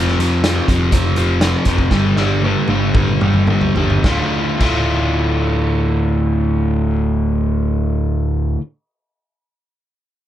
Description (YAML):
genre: quiet-loud alternative rock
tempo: 106-125 BPM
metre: 4/4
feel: straight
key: D minor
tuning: A4 = 440 Hz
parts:
  - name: overdriven semi-hollow guitar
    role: riff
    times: 0.0-8.6 s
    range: D2 to F4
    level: -17 LUFS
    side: equal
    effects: none
  - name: overdriven picked electric bass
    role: bass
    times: 0.0-8.6 s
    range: D1 to F2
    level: -19 LUFS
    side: equal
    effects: none
  - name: raw garage drum kit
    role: drums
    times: 0.1-4.8 s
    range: crash cymbal, hi-hat, kick drum, snare drum, toms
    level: -19 LUFS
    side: equal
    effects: none
room: little or no reverb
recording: none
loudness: -14 LUFS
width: side -12 dB against mid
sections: 0.0-4.0 A section; 4.0-8.6 B section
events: slowing down 0.0-4.0; drum fill 1.9-4.0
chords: 0.0 F5; 1.9 G5; 4.0 Dm